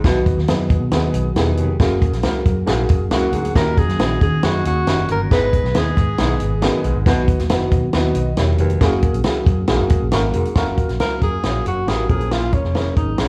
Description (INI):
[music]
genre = uptempo 1960s-style soul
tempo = 137 BPM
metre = 4/4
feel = straight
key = F# major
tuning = A4 = 440 Hz
[part]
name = clear upright piano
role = accompaniment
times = 0.0-13.3 s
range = A#3 to D#5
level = -26 LUFS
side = equal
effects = none
[part]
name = percussive tonewheel organ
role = sustained chords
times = 0.0-13.3 s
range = D#3 to A#4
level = -30 LUFS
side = equal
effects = chorus vibrato, stopped rotary speaker
[part]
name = warm baritone saxophone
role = riff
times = 0.0-13.3 s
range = D#2 to B2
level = -28 LUFS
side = equal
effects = none
[part]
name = vintage muted picked electric bass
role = bass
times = 0.0-13.3 s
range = E1 to D#3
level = -24 LUFS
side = equal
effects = none
[part]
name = compact cocktail drum kit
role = drums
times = 0.0-13.3 s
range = hi-hat, kick drum, snare drum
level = -21 LUFS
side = equal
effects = none
[part]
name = breathy tenor saxophone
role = melody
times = 3.1-6.8, 11.0-13.3 s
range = C#4 to B4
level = -25 LUFS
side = equal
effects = none
[part]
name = glockenspiel with hard plastic mallets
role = second line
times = 3.1-6.8 s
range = F#6 to B6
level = -36 LUFS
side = equal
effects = none
[sound]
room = wet large studio reverb, RT60 0.8 s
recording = band playing live in one room, cassette tape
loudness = -18 LUFS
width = mono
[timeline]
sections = 0.0-10.6 A section; 10.6-13.3 B section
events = none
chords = 0.0 B; 1.8 F#add9; 3.6 D#m7; 5.3 G#m; 7.1 B; 8.8 F#add9; 10.6 F#maj7; 12.1 A#m7